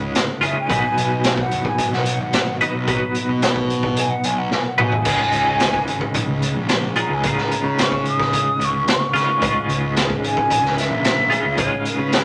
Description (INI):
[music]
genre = psychedelic rock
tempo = 110 BPM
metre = 4/4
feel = straight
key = Db mixolydian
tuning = A4 = 441 Hz
[part]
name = breathy concert flute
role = melody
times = 0.0-12.2 s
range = Ab4 to Eb6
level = -24 LUFS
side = equal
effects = none
[part]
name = twelve-string electric guitar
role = riff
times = 0.0-12.2 s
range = Db2 to Cb5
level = -25 LUFS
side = equal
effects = tremolo
[part]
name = fuzz picked electric bass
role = bass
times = 0.0-12.2 s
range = Gb1 to Db3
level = -27 LUFS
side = equal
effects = overdrive
[part]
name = raw garage drum kit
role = drums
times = 0.1-12.2 s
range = crash cymbal, hi-hat, kick drum, snare drum, toms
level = -24 LUFS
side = equal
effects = none
[sound]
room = wet club reverb, RT60 0.9 s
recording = none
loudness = -19 LUFS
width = mono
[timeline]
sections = 0.0-12.2 A section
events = flute solo 0.0-12.2; drum fill 4.5-5.1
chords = 0.0 Db; 0.7 Cb; 5.1 Db